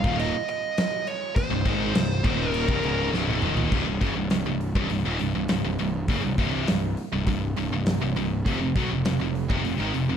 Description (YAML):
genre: heavy metal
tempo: 101 BPM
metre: 4/4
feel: straight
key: C phrygian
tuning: A4 = 440 Hz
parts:
  - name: high-gain lead guitar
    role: melody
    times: 0.0-3.1 s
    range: C5 to F5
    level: -29 LUFS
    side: right 1 dB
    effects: distortion
  - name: phased analog pad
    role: sustained chords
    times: 0.5-3.7 s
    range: Eb3 to C5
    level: -47 LUFS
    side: right 1 dB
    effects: none
  - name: heavy high-gain guitar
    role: riff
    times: 0.0-10.2 s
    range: C2 to Ab3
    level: -29 LUFS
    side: right 9 dB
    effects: distortion
  - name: scooped high-gain guitar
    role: riff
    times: 0.0-10.2 s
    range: C2 to Ab3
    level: -29 LUFS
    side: left 11 dB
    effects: distortion
  - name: fuzz picked electric bass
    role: bass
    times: 0.0-10.2 s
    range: C1 to B1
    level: -29 LUFS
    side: equal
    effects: overdrive
  - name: big rock drum kit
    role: drums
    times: 0.0-10.1 s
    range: crash cymbal, hi-hat, kick drum, snare drum, toms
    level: -28 LUFS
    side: equal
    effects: none
room: small room ambience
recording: dark, warm production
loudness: -23 LUFS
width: side -8 dB against mid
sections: 0.0-3.7 A section; 3.7-10.2 B section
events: drum fill 3.1-3.7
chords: 0.0 Cm; 3.7 C5; 8.5 F5